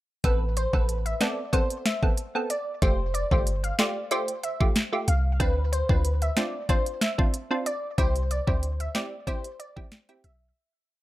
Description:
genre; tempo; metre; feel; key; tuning
dancehall; 93 BPM; 4/4; straight; A minor; A4 = 440 Hz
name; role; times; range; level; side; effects
glassy wavetable pluck; melody; 0.2-10.3 s; B4 to F5; -31 LUFS; equal; chorus, tape echo
wavetable chord stab; accompaniment; 0.2-10.3 s; A3 to A4; -30 LUFS; right 2 dB; none
warm 808-style bass; bass; 0.2-10.5 s; F1 to D2; -26 LUFS; equal; none
island pop drum kit; drums; 0.2-10.4 s; hi-hat, kick drum, snare drum; -26 LUFS; equal; overdrive
room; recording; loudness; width
little or no reverb; none; -24 LUFS; side -16 dB against mid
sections
0.2-10.6 verse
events
fade-out 8.0-10.6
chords
0.2 Amadd9; 2.8 Fadd9; 5.4 Dm7; 8.0 C

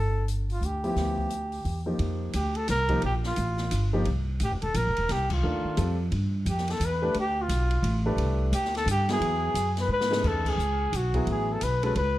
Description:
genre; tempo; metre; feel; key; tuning
modal jazz; 175 BPM; 3/4; swing 62% on 8ths; unclear; A4 = 440 Hz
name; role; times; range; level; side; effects
breathy trumpet; melody; 0.0-12.2 s; F4 to B4; -29 LUFS; equal; none
upright bass; bass; 0.0-12.2 s; Eb1 to G#2; -27 LUFS; equal; none
open jazz drum kit; drums; 0.3-12.1 s; crash cymbal, hi-hat, kick drum, ride cymbal, snare drum; -36 LUFS; left 1 dB; none
dark grand piano; accompaniment; 0.8-12.0 s; Db3 to B4; -31 LUFS; left 1 dB; none
room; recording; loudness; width
light reverb; none; -24 LUFS; side -15 dB against mid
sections
0.0-2.0 A section; 2.0-10.2 B section; 10.2-12.2 C section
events
band accent 5.3, 10.4; drum fill 9.9-10.2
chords
0.0 G7(no3); 2.0 F9sus4; 6.1 G7sus2; 9.2 Eadd9; 10.2 Amaj9

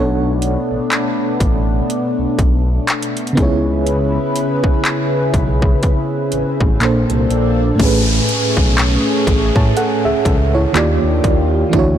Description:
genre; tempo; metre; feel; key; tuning
contemporary R&B; 61 BPM; 4/4; swing 58% on 16ths; A major; A4 = 440 Hz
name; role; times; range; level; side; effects
FM electric piano with tremolo; accompaniment; 0.0-12.0 s; A2 to A5; -19 LUFS; right 2 dB; none
chorused pulse-width pad; sustained chords; 0.0-12.0 s; C#3 to C#5; -20 LUFS; left 1 dB; none
smooth synth bass; bass; 0.0-12.0 s; A1 to A2; -18 LUFS; equal; none
swell and downlifter; sound effects; 6.1-12.0 s; none; -24 LUFS; equal; none
trap drum kit; drums; 0.4-12.0 s; crash cymbal, handclaps, hi-hat, kick drum; -18 LUFS; equal; overdrive
room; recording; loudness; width
little or no reverb; blown-out, overdriven recording, overdrive; -13 LUFS; side -10 dB against mid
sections
0.0-7.8 A section; 7.8-12.0 B section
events
swell 6.1-7.8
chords
0.0 Bm9; 3.4 C#m7; 6.8 Bbmaj7; 7.8 Amaj9; 10.7 D#maj9

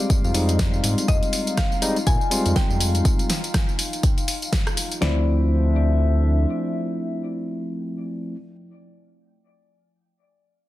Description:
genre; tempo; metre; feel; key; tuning
deep house; 122 BPM; 4/4; swing 58% on 16ths; D minor; A4 = 440 Hz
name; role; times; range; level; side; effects
mallet-like synth pluck; melody; 0.0-8.3 s; D5 to Ab5; -32 LUFS; left 3 dB; chorus, dub echo
hollow soft pad; sustained chords; 0.0-8.3 s; F3 to F5; -32 LUFS; left 2 dB; chorus, vintage 12-bit sampler grit, sidechain pumping
bright tine electric piano; stabs; 0.0-8.4 s; F3 to G4; -26 LUFS; equal; vintage 12-bit sampler grit, sidechain pumping, digital delay
deep house drum kit; drums; 0.0-5.0 s; hi-hat, rim click, snare drum, tambourine; -26 LUFS; left 1 dB; none
deep house drum kit; drums; 0.1-5.2 s; kick drum, snare drum; -22 LUFS; equal; none
round analog bass; bass; 0.2-6.5 s; D2 to Bb2; -20 LUFS; equal; sidechain pumping
room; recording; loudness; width
light reverb, digital ambience; dense, heavily limited modern master; -19 LUFS; side -16 dB against mid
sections
0.0-5.0 A section; 5.0-9.0 B section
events
drop 0.0-5.0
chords
0.0 Fm9; 5.0 Dm9

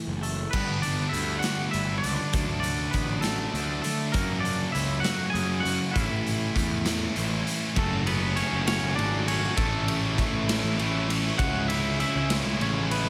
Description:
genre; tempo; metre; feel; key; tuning
quiet-loud alternative rock; 66 BPM (dotted quarters); 6/8; straight; unclear; A4 = 440 Hz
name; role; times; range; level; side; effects
picked steel-string acoustic guitar; arpeggios; 0.0-4.1 s; G2 to A3; -40 LUFS; equal; none
fuzz picked electric bass; bass; 0.1-13.1 s; F#1 to F#2; -32 LUFS; equal; overdrive
twangy electric guitar; melody; 0.2-13.1 s; A3 to G#5; -34 LUFS; equal; slapback echo
raw garage drum kit; drums; 0.2-13.1 s; crash cymbal, hi-hat, kick drum, ride cymbal, snare drum; -32 LUFS; equal; none
thick fuzz guitar; riff; 0.5-13.1 s; F#2 to F#4; -34 LUFS; equal; distortion
tight distorted guitar; riff; 0.5-13.1 s; F#2 to F#4; -36 LUFS; equal; distortion, slapback echo
dark studio string section; sustained chords; 7.8-13.1 s; G#4 to C#6; -44 LUFS; equal; none
cranked stack guitar; riff; 7.8-13.1 s; F#2 to C#4; -37 LUFS; equal; none
room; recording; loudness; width
moderate concert hall reverb, RT60 1.8 s, studio ambience; big arena sound; -26 LUFS; mono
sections
0.5-7.8 A section; 7.8-13.1 B section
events
none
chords
0.0 A5; 0.5 G; 2.3 D; 4.1 F#; 6.0 A; 7.8 F#m; 9.6 A; 11.4 C#m

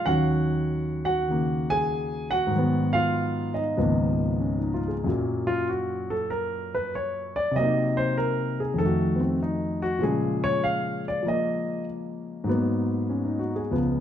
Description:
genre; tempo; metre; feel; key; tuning
solo jazz; 97 BPM; 4/4; swing 69% on 8ths, rubato; unclear; A4 = 440 Hz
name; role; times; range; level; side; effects
warm grand piano; solo; 0.0-14.0 s; Db2 to Ab5; -23 LUFS; equal; none
room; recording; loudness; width
moderate large studio reverb, RT60 1.3 s; dark, warm production; -23 LUFS; side -10 dB against mid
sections
0.0-5.0 A section; 5.0-14.0 B section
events
grand piano solo 5.0-14.0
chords
0.1 Ebm7; 2.5 Abm7; 3.8 Db13; 5.0 Gb; 7.6 Cm7b5; 8.8 F7b9; 10.0 Bbm7; 12.5 Abm9

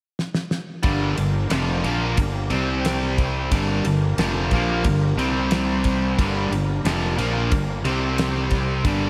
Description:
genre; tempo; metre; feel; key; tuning
classic rock; 90 BPM; 4/4; straight; G minor; A4 = 439 Hz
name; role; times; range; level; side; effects
damped 70s drum kit; drums; 0.2-9.0 s; kick drum, ride cymbal, snare drum; -28 LUFS; equal; none
cranked stack guitar; riff; 0.8-9.1 s; F2 to C4; -25 LUFS; equal; overdrive
fuzz fingered electric bass; bass; 0.8-9.1 s; F1 to C2; -28 LUFS; equal; overdrive
tonewheel organ; sustained chords; 0.9-9.1 s; G3 to C5; -34 LUFS; equal; slow rotary speaker, overdrive, chorus vibrato
room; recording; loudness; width
moderate lush hall reverb, RT60 2.2 s; big arena sound; -22 LUFS; mono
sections
0.8-9.1 A section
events
drum fill 0.2-0.8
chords
0.0 N.C.; 0.8 Gm; 2.5 C5; 3.5 Gm; 5.2 C5; 6.2 Gm; 7.9 C5

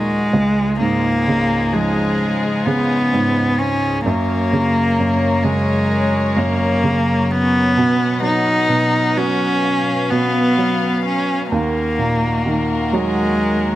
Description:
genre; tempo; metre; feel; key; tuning
pop ballad; 64 BPM; 4/4; straight; unclear; A4 = 439 Hz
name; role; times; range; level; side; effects
warm cello; melody; 0.0-13.8 s; Ab3 to Eb4; -17 LUFS; left 1 dB; none
warm grand piano; accompaniment; 0.0-13.8 s; Db2 to F#3; -20 LUFS; right 2 dB; none
warm studio string section; sustained chords; 0.0-13.8 s; Db2 to F#5; -24 LUFS; left 2 dB; none
room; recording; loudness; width
light reverb, small room ambience; none; -15 LUFS; side -14 dB against mid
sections
0.0-13.8 A section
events
none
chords
0.3 Dbadd9; 4.1 Gb; 7.8 Bsus2; 11.5 Ebm

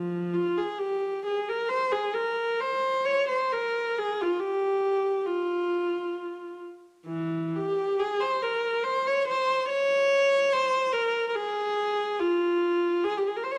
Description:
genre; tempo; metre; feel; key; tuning
classical, free, expressive piece for unaccompanied viola; 58-74 BPM; 4/4; rubato; F minor; A4 = 440 Hz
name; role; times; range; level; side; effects
rich viola; solo; 0.0-13.6 s; E3 to Db5; -27 LUFS; equal; none
room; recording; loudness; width
wet recital hall reverb, RT60 1.5 s; dark, warm production; -27 LUFS; mono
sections
0.0-13.6 A section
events
none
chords
none

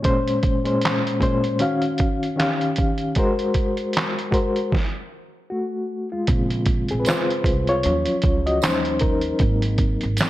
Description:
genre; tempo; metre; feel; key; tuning
lo-fi hip hop; 77 BPM; 4/4; swing 60% on 16ths; Bb minor; A4 = 440 Hz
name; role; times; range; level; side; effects
reed electric piano; accompaniment; 0.0-10.3 s; Bb2 to F5; -22 LUFS; left 1 dB; medium tremolo, low-pass filter
lo-fi sampler-style drum kit; drums; 0.0-10.3 s; handclaps, hi-hat, kick drum, snare drum; -22 LUFS; right 1 dB; none
upright bass; bass; 6.3-10.2 s; Ab1 to Eb2; -25 LUFS; right 1 dB; none
tambourine; percussion; 7.1-10.3 s; none; -36 LUFS; right 17 dB; none
room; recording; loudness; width
light reverb, digital ambience; none; -19 LUFS; side -15 dB against mid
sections
0.0-6.3 A section; 6.3-10.3 B section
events
stop 4.7-6.3; reed electric piano solo 6.3-10.3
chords
0.0 Bbm9; 1.6 Ebm9; 2.4 Eb9; 3.2 Ab9; 4.7 N.C.; 5.5 Gbmmaj7; 6.3 Bbm9; 7.8 Ebm9; 8.6 Eb9; 9.4 Ab9

